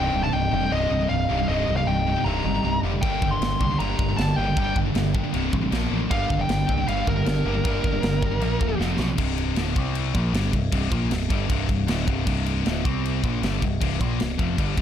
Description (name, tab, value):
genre	heavy metal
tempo	156 BPM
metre	4/4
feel	straight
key	C minor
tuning	A4 = 440 Hz
part	high-gain lead guitar	melody	0.0-8.8 s	Bb4 to C6	-27 LUFS	left 1 dB	distortion
part	heavy high-gain guitar	riff	0.0-14.8 s	C2 to C4	-30 LUFS	left 11 dB	distortion
part	scooped high-gain guitar	riff	0.0-9.2 s	C2 to Bb3	-29 LUFS	right 8 dB	distortion
part	sludgy distorted guitar	riff	0.0-14.8 s	C2 to G4	-28 LUFS	equal	overdrive
part	growling picked electric bass	bass	0.0-14.8 s	C1 to C2	-27 LUFS	equal	overdrive
part	tight metal drum kit	drums	3.0-14.8 s	crash cymbal, kick drum, snare drum	-27 LUFS	equal	none
room	studio ambience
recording	dark, warm production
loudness	-21 LUFS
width	side -9 dB against mid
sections	0.0-9.2 A section; 9.2-14.8 B section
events	drum fill 8.8-9.2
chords	0.0 Cm; 3.0 Gm; 5.3 C5; 5.7 Bb5; 6.1 Gm; 8.4 Bb5; 8.8 F5; 9.2 C5